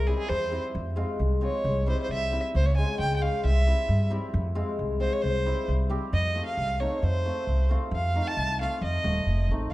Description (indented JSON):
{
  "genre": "klezmer",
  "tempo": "134 BPM",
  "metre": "2/4",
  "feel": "straight",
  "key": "unclear",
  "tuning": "A4 = 440 Hz",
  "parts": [
    { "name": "warm violin", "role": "melody", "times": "0.0-9.7 s", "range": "Ab4 to A5", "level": "-30 LUFS", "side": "right 1 dB", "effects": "none" },
    { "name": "upright bass", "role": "bass", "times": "0.0-9.7 s", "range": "Eb1 to G2", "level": "-26 LUFS", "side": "equal", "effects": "none" },
    { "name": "cimbalom", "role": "accompaniment", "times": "0.1-9.6 s", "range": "G3 to G4", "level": "-32 LUFS", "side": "left 3 dB", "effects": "none" }
  ],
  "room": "moderate recital hall reverb, RT60 1.6 s",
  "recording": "dark, warm production",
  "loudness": "-24 LUFS",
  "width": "side -17 dB against mid",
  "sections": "0.0-6.1 A section; 6.1-9.7 B section",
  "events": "none",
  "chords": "0.0 C; 0.7 Fm; 1.6 C; 2.5 Db; 3.4 C; 4.3 Fm; 5.2 C; 6.1 F",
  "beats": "0.29 | 0.74 1.19 | 1.64 2.10 | 2.54 3.00 | 3.44 3.89 | 4.34 4.79 | 5.24 5.69 | 6.14 6.59 | 7.04 7.49 | 7.93 8.38 | 8.83 9.28 | 9.73"
}